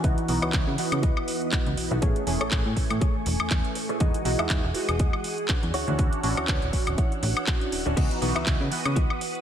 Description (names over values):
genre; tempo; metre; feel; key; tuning
filtered disco house; 121 BPM; 4/4; swing 56% on 16ths; C# minor; A4 = 441 Hz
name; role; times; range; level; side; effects
funky polysynth comp; accompaniment; 0.0-9.4 s; E3 to G#5; -30 LUFS; right 2 dB; chorus, phaser, sidechain pumping, low-pass filter
string machine, full ensemble; sustained chords; 0.0-9.4 s; E3 to E6; -33 LUFS; equal; ensemble chorus, sidechain pumping, low-pass filter
direct-recorded clean electric guitar; riff; 0.0-9.2 s; E4 to E5; -35 LUFS; left 1 dB; wide subtle chorus, sidechain pumping, low-pass filter
slap-like FM bass; bass; 0.0-9.1 s; D1 to C#3; -29 LUFS; equal; sidechain pumping, low-pass filter
electronic kick drum; drums; 0.0-9.1 s; none; -25 LUFS; equal; none
house drum kit; drums; 0.0-9.4 s; crash cymbal, handclaps, hi-hat, woodblock; -30 LUFS; left 1 dB; none
room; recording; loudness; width
light reverb, digital ambience; none; -23 LUFS; side -9 dB against mid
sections
0.0-9.4 A section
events
filter sweep 0.0-9.4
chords
0.0 C#m11; 2.0 Amaj7; 4.0 Emaj9; 5.7 Dmaj9; 8.0 C#m11